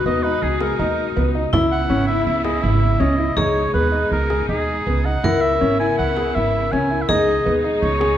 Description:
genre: contemporary instrumental, chamber music in an uneven meter.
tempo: 162 BPM.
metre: 5/4.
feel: straight.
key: C# dorian.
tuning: A4 = 440 Hz.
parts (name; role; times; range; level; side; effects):
warm oboe; melody; 0.0-8.2 s; G#4 to G#5; -24 LUFS; right 2 dB; none.
vibraphone with hard mallets; second line; 0.0-8.2 s; E4 to A#4; -23 LUFS; left 4 dB; none.
clear studio string section; sustained chords; 0.0-8.2 s; B2 to E4; -28 LUFS; equal; none.
clear grand piano; arpeggios; 0.1-8.1 s; B3 to G#4; -23 LUFS; left 2 dB; none.
upright bass; bass; 0.1-8.1 s; G#1 to D#2; -22 LUFS; right 2 dB; none.
frame drum; percussion; 0.6-8.2 s; none; -27 LUFS; right 3 dB; none.
room: moderate recital hall reverb, RT60 1.5 s.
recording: none.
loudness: -16 LUFS.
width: side -11 dB against mid.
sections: 0.0-8.2 A section.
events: none.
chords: 0.0 G#m/C#; 1.5 C#m7; 3.4 G#m/C#; 5.2 C#m7; 7.1 G#m/C#.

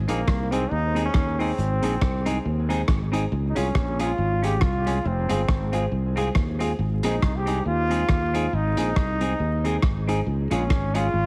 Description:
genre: ska.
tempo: 138 BPM.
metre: 4/4.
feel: swing 57% on 8ths.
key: Ab major.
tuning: A4 = 440 Hz.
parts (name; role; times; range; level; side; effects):
sustaining fretless electric bass; bass; 0.0-11.3 s; F1 to Eb2; -28 LUFS; equal; none.
bright trombone; melody; 0.1-11.3 s; Bb3 to G4; -30 LUFS; equal; tape echo, plate reverb.
semi-hollow electric guitar; accompaniment; 0.1-11.1 s; C4 to Ab4; -33 LUFS; equal; none.
dark upright piano; stabs; 0.1-11.1 s; Ab3 to Ab4; -34 LUFS; equal; tape echo.
crunchy breakbeat drum kit; drums; 0.1-11.0 s; hi-hat, kick drum, rim click; -28 LUFS; equal; none.
room: light reverb.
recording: heavily compressed radio sound, multiband compression, vinyl crackle.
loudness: -24 LUFS.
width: mono.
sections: 0.0-11.3 A section.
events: none.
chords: 0.0 Ab; 3.3 Db; 5.0 Fm; 6.8 Ab; 10.3 Db.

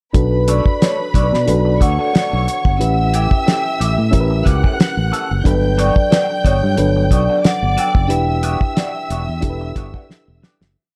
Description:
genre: lush 1970s-style soul.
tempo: 91 BPM.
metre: 4/4.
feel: swing 54% on 16ths.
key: E dorian.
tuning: A4 = 440 Hz.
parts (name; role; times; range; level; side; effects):
vibraphone with soft mallets; melody; 0.1-10.1 s; B4 to G5; -22 LUFS; equal; none.
warm symphonic string section; second line; 0.1-10.7 s; B4 to G6; -28 LUFS; equal; none.
reed electric piano; accompaniment; 0.1-10.8 s; F#3 to B4; -25 LUFS; equal; fast tremolo.
fingered electric bass; bass; 0.1-10.7 s; E1 to B2; -20 LUFS; equal; none.
cloth-damped thuddy drum kit; drums; 0.1-10.8 s; hi-hat, kick drum, snare drum; -18 LUFS; equal; none.
electric guitar through a small old amp; riff; 0.5-10.6 s; E3 to C#5; -29 LUFS; equal; wah.
room: small room ambience.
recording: dark, warm production.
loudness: -16 LUFS.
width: mono.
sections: 0.1-10.8 verse.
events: fade-out 8.1-10.8; drum fill 10.1-10.8.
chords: 0.1 Bm9; 2.8 A7; 5.5 Gmaj7; 8.1 Em9.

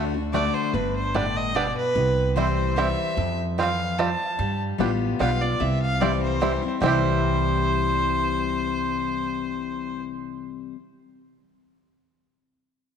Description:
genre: bluegrass.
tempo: 148 BPM.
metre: 3/4.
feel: swing 54% on 8ths.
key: C major.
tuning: A4 = 440 Hz.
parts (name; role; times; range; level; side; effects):
bluegrass banjo; melody; 0.0-10.7 s; G3 to G4; -28 LUFS; right 6 dB; slapback echo.
picked steel-string acoustic guitar; accompaniment; 0.0-10.8 s; F2 to F#4; -27 LUFS; left 9 dB; none.
upright bass; bass; 0.0-10.7 s; G1 to G2; -27 LUFS; right 2 dB; none.
clear fiddle; melody; 0.3-10.0 s; B4 to A5; -27 LUFS; right 2 dB; none.
room: moderate echo chamber reverb, RT60 2.5 s.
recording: 1960s-style stereo with parts hard left and right.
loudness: -21 LUFS.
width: side -7 dB against mid.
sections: 0.0-6.8 A section; 6.8-9.3 B section.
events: none.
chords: 0.0 D; 0.7 G; 2.0 C; 3.2 F; 4.4 G7; 5.6 C.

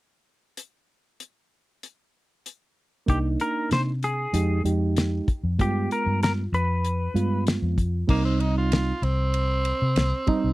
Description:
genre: straight-eighth soul blues.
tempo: 96 BPM.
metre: 4/4.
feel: swing 53% on 16ths.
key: unclear.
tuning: A4 = 440 Hz.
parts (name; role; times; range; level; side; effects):
damped 70s drum kit; drums; 0.6-10.4 s; crash cymbal, hi-hat, kick drum, ride cymbal, snare drum; -25 LUFS; left 1 dB; none.
clean lap steel guitar; melody; 3.1-7.4 s; G4 to C5; -28 LUFS; left 2 dB; none.
reed electric piano; accompaniment; 3.1-10.5 s; G3 to G4; -27 LUFS; right 4 dB; spring reverb.
vintage muted fingered electric bass; bass; 3.1-10.5 s; C2 to C3; -25 LUFS; left 1 dB; none.
growling tenor saxophone; second line; 8.1-10.5 s; Bb3 to F4; -28 LUFS; right 2 dB; none.
room: little or no reverb.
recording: dry, close 1970s-style studio recording.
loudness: -22 LUFS.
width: side -18 dB against mid.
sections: 0.6-3.1 A section; 3.1-8.1 B section; 8.1-10.5 C section.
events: tenor saxophone solo 8.1-10.5.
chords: 0.6 N.C.; 3.1 Cm7; 4.3 Fm7; 5.6 G7b9; 8.1 Cm.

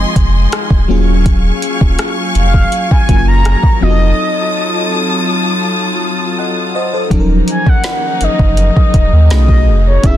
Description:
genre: contemporary R&B.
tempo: 82 BPM.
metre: 4/4.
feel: straight.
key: Eb dorian.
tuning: A4 = 440 Hz.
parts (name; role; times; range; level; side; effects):
FM electric piano with soft pad layer; accompaniment; 0.0-10.2 s; F3 to Gb5; -18 LUFS; left 3 dB; chorus.
rich studio string section; sustained chords; 0.0-10.2 s; Db3 to Eb6; -19 LUFS; left 1 dB; sidechain pumping.
warm sub bass; bass; 0.0-10.2 s; Eb1 to Eb2; -11 LUFS; equal; none.
smooth R&B drum kit; drums; 0.2-10.2 s; hi-hat, kick drum, rim click, snare drum; -12 LUFS; equal; soft clipping on snare.
mellow horn-like synth lead; melody; 2.4-10.2 s; C#5 to Bb5; -18 LUFS; equal; chorus, ping-pong delay.
room: little or no reverb.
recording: dense, heavily limited modern master.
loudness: -10 LUFS.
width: side -12 dB against mid.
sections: 0.0-7.1 A section; 7.1-10.2 B section.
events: break 4.2-7.1.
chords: 0.0 Fm7; 0.9 Ebm11; 3.8 F7b9; 7.1 Ebm7; 9.3 B13.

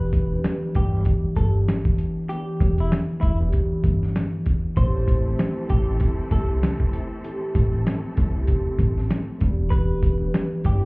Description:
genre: hip hop, boom-bap hip-hop.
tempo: 97 BPM.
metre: 4/4.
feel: swing 58% on 16ths.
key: A minor.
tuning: A4 = 438 Hz.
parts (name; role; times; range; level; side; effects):
semi-hollow electric guitar; melody; 0.0-10.9 s; E4 to C5; -33 LUFS; equal; high-pass filter, low-pass filter, slapback echo.
concert harp; accompaniment; 0.0-10.9 s; A2 to G4; -27 LUFS; equal; cassette tape, high-pass filter, low-pass filter.
upright bass; bass; 0.0-10.9 s; E1 to C2; -23 LUFS; equal; none.
boom bap sampler-style drum kit; drums; 0.1-10.8 s; hi-hat, kick drum, snare drum; -22 LUFS; equal; none.
warm studio string section; stabs; 4.8-10.9 s; E3 to A4; -35 LUFS; left 1 dB; high-pass filter, low-pass filter, slapback echo.
room: little or no reverb.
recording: heard muffled through a wall, club reverb, vinyl crackle, EQ.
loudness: -20 LUFS.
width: side -28 dB against mid.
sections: 0.0-10.9 A section.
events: none.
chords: 0.0 Em7; 4.8 Am7; 9.4 Em7.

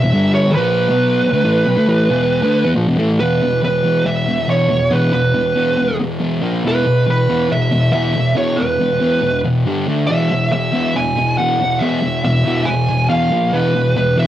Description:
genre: rock.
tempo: 139 BPM.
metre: 4/4.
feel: straight.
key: unclear.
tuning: A4 = 440 Hz.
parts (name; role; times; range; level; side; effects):
fuzz lead guitar; melody; 0.0-14.3 s; G#4 to G#5; -17 LUFS; right 2 dB; distortion, cassette tape.
thick fuzz guitar; riff; 0.0-14.3 s; E2 to D4; -15 LUFS; left 1 dB; distortion, cassette tape.
room: light reverb.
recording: home recording on cassette.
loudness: -13 LUFS.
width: side -12 dB against mid.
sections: 0.0-3.2 A section; 3.2-14.3 B section.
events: none.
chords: 0.0 E5; 6.4 A#5; 6.6 E5; 9.7 G5; 9.9 D5; 10.1 E; 13.3 A#5; 13.5 E5.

